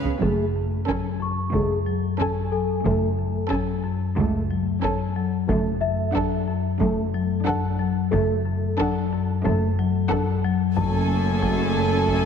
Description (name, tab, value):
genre	cinematic, suspense film score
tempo	91 BPM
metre	4/4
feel	straight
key	F# minor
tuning	A4 = 438 Hz
part	warm studio violin section	melody	0.0-12.3 s	F#5 to G#5	-36 LUFS	left 2 dB	none
part	dark symphonic viola section	accompaniment	0.0-12.3 s	B3 to D4	-32 LUFS	right 3 dB	none
part	marimba with medium mallets	riff	0.0-12.3 s	F#2 to F#3	-25 LUFS	left 5 dB	none
part	rich symphonic cello section	bass	0.0-12.3 s	C#2 to C#3	-29 LUFS	right 4 dB	none
part	taiko ensemble	drums	0.0-12.3 s	none	-32 LUFS	right 1 dB	none
part	worn celesta	texture	0.0-10.8 s	A4 to C#6	-30 LUFS	left 3 dB	none
part	mellow French horn section	sustained chords	0.2-12.3 s	A3 to A4	-28 LUFS	equal	none
part	clear symphonic double bass section	bass	0.2-12.3 s	F#1 to C#2	-28 LUFS	right 5 dB	none
part	warm symphonic violin section	second line	0.9-12.3 s	A4	-30 LUFS	right 1 dB	none
room	moderate concert hall reverb, RT60 2.3 s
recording	heavily compressed radio sound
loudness	-21 LUFS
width	side -7 dB against mid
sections	0.2-12.3 A section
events	drum fill 0.0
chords	0.2 F#madd9; 5.5 D/F#; 10.8 F#madd9